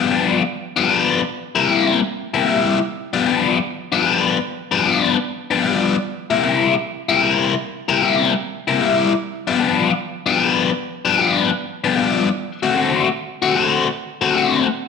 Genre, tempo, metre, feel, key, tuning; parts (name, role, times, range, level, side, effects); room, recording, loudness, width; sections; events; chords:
blues; 152 BPM; 4/4; swing 67% on 8ths; G mixolydian; A4 = 441 Hz
biting overdriven guitar; solo; 0.0-14.7 s; G2 to F#4; -16 LUFS; left 5 dB; phaser
wet echo chamber reverb, RT60 1.3 s, digital ambience; -16 LUFS; side -5 dB against mid
0.0-14.9 A section
0.0 G7; 1.3 C7; 2.9 G7; 6.0 C7; 9.2 G7; 12.4 D7